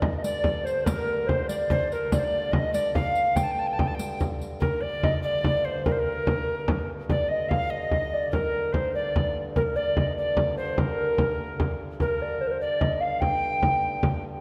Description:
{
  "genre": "medieval dance",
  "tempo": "97 BPM (dotted quarters)",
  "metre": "6/8",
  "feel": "straight",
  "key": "G minor",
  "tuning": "A4 = 440 Hz",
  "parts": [
    { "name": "warbly nostalgic lead", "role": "melody", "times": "0.0-14.2 s", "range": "Bb4 to G5", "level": "-30 LUFS", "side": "equal", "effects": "chorus, dub echo" },
    { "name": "hand-pumped harmonium", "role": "drone", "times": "0.0-14.4 s", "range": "G2 to D3", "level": "-39 LUFS", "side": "equal", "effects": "none" },
    { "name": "frame drum", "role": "percussion", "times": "0.0-14.2 s", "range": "none", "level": "-30 LUFS", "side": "equal", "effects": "none" },
    { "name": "alto recorder", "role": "second line", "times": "0.2-14.2 s", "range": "Bb4 to A5", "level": "-34 LUFS", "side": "equal", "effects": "none" },
    { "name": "riq", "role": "percussion", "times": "0.2-4.5 s", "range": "none", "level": "-39 LUFS", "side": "equal", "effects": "none" }
  ],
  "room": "wet scoring stage reverb, RT60 1.7 s",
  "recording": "none",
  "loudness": "-26 LUFS",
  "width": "mono",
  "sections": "0.0-4.6 A section; 4.6-14.4 B section",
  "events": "speeding up 0.0-14.4",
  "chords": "none",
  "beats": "0.24 | 0.87 1.49 | 2.12 2.75 | 3.37 4.00 | 4.62 5.24 | 5.86 6.48 | 7.10 7.71 | 8.33 8.95 | 9.56 10.17 | 10.79 11.39 | 12.01 12.61 | 13.22 13.83"
}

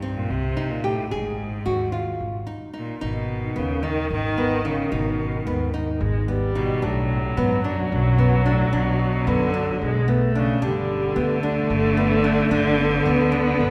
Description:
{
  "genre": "contemporary instrumental, chamber music in an uneven meter",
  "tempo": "221 BPM (eighths)",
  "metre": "7/8",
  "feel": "straight",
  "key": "unclear",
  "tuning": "A4 = 441 Hz",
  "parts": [
    { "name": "bright cello", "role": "melody", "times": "0.0-13.7 s", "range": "F#2 to D#3", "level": "-28 LUFS", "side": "equal", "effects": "none" },
    { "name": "nylon-string guitar", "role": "arpeggios", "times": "0.0-13.7 s", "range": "B3 to G#4", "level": "-29 LUFS", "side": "equal", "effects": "none" },
    { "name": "upright bass", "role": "bass", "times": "0.0-13.7 s", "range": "G1 to G2", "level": "-28 LUFS", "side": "equal", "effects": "none" },
    { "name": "dark viola", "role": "second line", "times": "3.0-13.7 s", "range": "D#3 to B3", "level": "-28 LUFS", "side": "equal", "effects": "none" }
  ],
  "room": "wet concert hall reverb, RT60 2.5 s",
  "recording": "heard from further back in the room",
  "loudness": "-22 LUFS",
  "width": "mono",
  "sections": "0.0-3.0 A section; 3.0-13.7 B section",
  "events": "none",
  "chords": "0.0 Cm; 1.1 G#5; 3.0 G#m; 6.8 Bm; 10.6 Gadd9",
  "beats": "0.03 0.30 0.57 0.84 | 1.11 1.39 1.66 1.93 2.20 2.48 2.75 | 3.02 3.29 3.56 3.83 4.11 4.38 4.65 | 4.92 5.20 5.47 5.74 6.01 6.28 6.56 | 6.83 7.10 7.37 7.64 7.92 8.19 8.46 | 8.73 9.00 9.27 9.54 9.82 10.09 10.36 | 10.63 10.90 11.17 11.44 11.71 11.98 12.25 | 12.52 12.79 13.06 13.33 13.60"
}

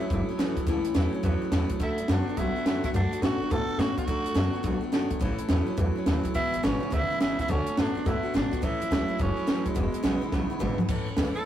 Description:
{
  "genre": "rockabilly",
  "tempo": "211 BPM",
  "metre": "4/4",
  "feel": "swing 64% on 8ths",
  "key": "A major",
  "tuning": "A4 = 443 Hz",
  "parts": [
    { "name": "raspy tenor saxophone", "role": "melody", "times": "0.0-11.4 s", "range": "G#3 to A4", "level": "-32 LUFS", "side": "right 2 dB", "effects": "none" },
    { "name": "picked steel-string acoustic guitar", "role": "accompaniment", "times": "0.0-11.4 s", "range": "E2 to F#4", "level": "-34 LUFS", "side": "left 2 dB", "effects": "none" },
    { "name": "electric guitar through a small old amp", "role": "riff", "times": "0.0-10.9 s", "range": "E2 to B3", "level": "-32 LUFS", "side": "equal", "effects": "none" },
    { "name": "upright bass", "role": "bass", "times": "0.0-11.4 s", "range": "E1 to A2", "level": "-30 LUFS", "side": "equal", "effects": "none" },
    { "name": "compact cocktail drum kit", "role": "drums", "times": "0.1-11.3 s", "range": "crash cymbal, hi-hat, kick drum, snare drum, toms", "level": "-29 LUFS", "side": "equal", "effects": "none" }
  ],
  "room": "moderate booth ambience, RT60 0.2 s",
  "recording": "rough rehearsal-room recording, warm saturation",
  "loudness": "-24 LUFS",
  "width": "side -11 dB against mid",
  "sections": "0.0-10.9 A section",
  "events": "drum fill 10.3-10.9",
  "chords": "0.0 A; 1.8 D; 5.2 A; 6.4 E; 7.5 D; 8.6 A; 9.8 E; 10.9 A",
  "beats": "0.10 0.39 | 0.67 0.95 1.24 1.52 | 1.80 2.09 2.37 2.66 | 2.94 3.23 3.51 3.79 | 4.08 4.36 4.65 4.93 | 5.21 5.50 5.78 6.07 | 6.35 6.64 6.92 7.21 | 7.49 7.77 8.06 8.34 | 8.62 8.91 9.19 9.47 | 9.76 10.04 10.32 10.61 | 10.89 11.17"
}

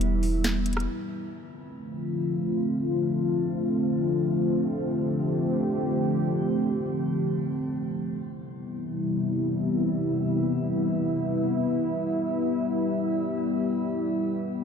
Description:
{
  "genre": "hip hop, atmospheric cloud-rap",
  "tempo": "free time",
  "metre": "none",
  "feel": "none",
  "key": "unclear",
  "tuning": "A4 = 436 Hz",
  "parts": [
    { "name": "dark analog pad", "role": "sustained chords", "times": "0.0-14.6 s", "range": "C3 to G4", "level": "-25 LUFS", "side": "left 1 dB", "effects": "chorus" },
    { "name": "clean 808-style bass", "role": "bass", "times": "0.0-0.9 s", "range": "E1", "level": "-27 LUFS", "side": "equal", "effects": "none" },
    { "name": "smooth R&B drum kit", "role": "drums", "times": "0.0-0.9 s", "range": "hi-hat, rim click, snare drum", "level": "-32 LUFS", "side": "equal", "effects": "none" }
  ],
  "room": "light reverb",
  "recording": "none",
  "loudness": "-24 LUFS",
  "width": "side -6 dB against mid",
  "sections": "0.0-1.3 A section; 1.3-14.6 B section",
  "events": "break 0.9-1.3",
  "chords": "0.0 Em; 1.3 Dm7; 8.2 Cmaj7; 11.7 Em",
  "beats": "free time"
}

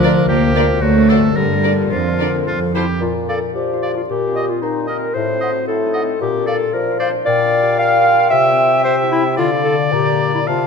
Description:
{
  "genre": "cinematic, playful, whimsical film cue",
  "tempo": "113 BPM",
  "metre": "2/4",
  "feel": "straight",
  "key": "Bb major",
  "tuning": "A4 = 440 Hz",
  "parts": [
    { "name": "warm studio violin section", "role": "melody", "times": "0.0-2.8 s", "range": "C5 to D5", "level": "-26 LUFS", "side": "left 1 dB", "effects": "none" },
    { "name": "bright oboe", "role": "second line", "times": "0.0-10.7 s", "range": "D4 to F5", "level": "-24 LUFS", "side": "right 1 dB", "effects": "none" },
    { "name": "warm clarinet", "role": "second line", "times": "0.0-10.7 s", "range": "Eb4 to F5", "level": "-18 LUFS", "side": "left 1 dB", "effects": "none" },
    { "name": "warm studio violin section", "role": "second line", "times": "0.0-2.8 s", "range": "A4 to C5", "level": "-27 LUFS", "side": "left 3 dB", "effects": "none" },
    { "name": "dark bassoon", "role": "accompaniment", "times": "0.0-10.7 s", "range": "A2 to F#3", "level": "-22 LUFS", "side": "right 2 dB", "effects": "none" },
    { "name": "dark studio viola section", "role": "accompaniment", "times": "0.0-2.8 s", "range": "D4 to F#4", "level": "-28 LUFS", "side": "right 2 dB", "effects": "none" },
    { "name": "mellow French horn section", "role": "sustained chords", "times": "0.0-2.5 s", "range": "D3 to Bb3", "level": "-22 LUFS", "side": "left 5 dB", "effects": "none" },
    { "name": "concert harp", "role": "arpeggios", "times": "0.0-10.7 s", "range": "F2 to D5", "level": "-21 LUFS", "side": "left 10 dB", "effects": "none" },
    { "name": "warm studio cello section", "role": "bass", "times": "0.0-2.5 s", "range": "D3 to Bb3", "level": "-18 LUFS", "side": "right 4 dB", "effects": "none" },
    { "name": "warm studio double bass section", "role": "bass", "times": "0.0-2.9 s", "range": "D2 to G2", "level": "-22 LUFS", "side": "right 4 dB", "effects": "none" },
    { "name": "mellow hollow silver concert flute", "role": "second line", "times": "3.3-10.7 s", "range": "Eb5 to Bb5", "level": "-24 LUFS", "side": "left 1 dB", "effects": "none" }
  ],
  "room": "moderate scoring stage reverb, RT60 1.6 s",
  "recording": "none",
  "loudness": "-14 LUFS",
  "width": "side -5 dB against mid",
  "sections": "0.0-3.0 A section; 3.0-10.7 B section",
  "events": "none",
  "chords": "0.0 Bb/D; 0.8 D7; 1.4 Gm; 1.9 Bb/F; 2.5 F; 3.0 Bb; 4.1 Cm7/Bb; 5.2 Adim7; 6.2 Bb; 7.3 Gm7/Bb; 8.3 C; 9.4 Dm; 9.9 Gm/Bb",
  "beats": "0.30 | 0.83 1.37 | 1.92 2.47 | 3.02 3.56 | 4.09 4.63 | 5.16 5.68 | 6.21 6.74 | 7.27 7.80 | 8.32 8.85 | 9.38 9.92 | 10.47"
}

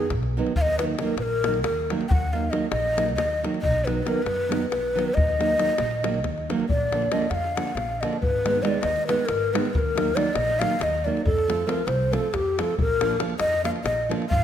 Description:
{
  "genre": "balkan folk, Balkan wedding band",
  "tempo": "275 BPM (eighths)",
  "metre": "7/8",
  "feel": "straight",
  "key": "Eb harmonic minor",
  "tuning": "A4 = 437 Hz",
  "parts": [
    { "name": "breathy mellow ney", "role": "melody", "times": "0.0-14.4 s", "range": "G4 to G5", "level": "-24 LUFS", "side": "left 1 dB", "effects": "none" },
    { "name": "nylon-string guitar", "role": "accompaniment", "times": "0.0-14.2 s", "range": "D3 to F4", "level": "-28 LUFS", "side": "right 5 dB", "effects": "none" },
    { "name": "upright bass", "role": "bass", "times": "0.0-14.4 s", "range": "Ab1 to F#2", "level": "-29 LUFS", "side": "equal", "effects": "none" },
    { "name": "davul", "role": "percussion", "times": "0.1-14.4 s", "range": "none", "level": "-29 LUFS", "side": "left 2 dB", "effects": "none" }
  ],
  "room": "light reverb",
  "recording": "minimal, uncompressed stereo recording",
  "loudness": "-21 LUFS",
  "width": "side -10 dB against mid",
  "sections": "0.0-6.7 A section; 6.7-14.4 B section",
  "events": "none",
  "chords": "0.0 B; 0.6 Ebm; 3.6 B; 5.2 Ebm; 6.7 Bb; 8.2 Abm; 9.7 Ebm; 11.3 F; 12.8 Bb",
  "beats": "0.14 0.36 | 0.58 0.80 1.01 1.23 1.45 1.67 1.89 | 2.11 2.33 2.55 2.76 2.98 3.20 3.42 | 3.64 3.86 4.08 4.29 4.51 4.73 4.95 | 5.17 5.39 5.60 5.82 6.04 6.26 6.48 | 6.70 6.91 7.13 7.35 7.57 7.79 8.00 | 8.22 8.44 8.66 8.87 9.09 9.31 9.53 | 9.74 9.96 10.18 10.40 10.61 10.83 11.05 | 11.27 11.48 11.70 11.92 12.13 12.35 12.57 | 12.79 13.00 13.22 13.44 13.65 13.87 14.09 | 14.30"
}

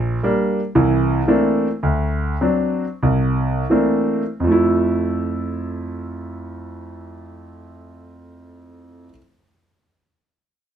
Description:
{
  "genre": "solo jazz",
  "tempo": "79-119 BPM",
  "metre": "4/4",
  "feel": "swing 67% on 8ths, rubato",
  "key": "F major",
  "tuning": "A4 = 440 Hz",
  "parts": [
    { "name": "clear concert grand piano", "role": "solo", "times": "0.0-9.2 s", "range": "Bb1 to E4", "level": "-18 LUFS", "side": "right 1 dB", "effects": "none" }
  ],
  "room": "moderate club reverb, RT60 0.5 s",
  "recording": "none",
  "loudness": "-17 LUFS",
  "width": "side -9 dB against mid",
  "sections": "0.0-4.4 A section; 4.4-10.3 B section",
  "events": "slowing down 0.0-4.4",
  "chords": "0.0 Bb6; 0.7 C13; 1.8 D7; 3.0 C13; 4.4 Fmaj7",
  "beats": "0.23 0.75 1.27 | 1.83 2.41 3.03 3.70 | 4.44 5.19 5.94 6.68 | 7.39 8.11 8.84"
}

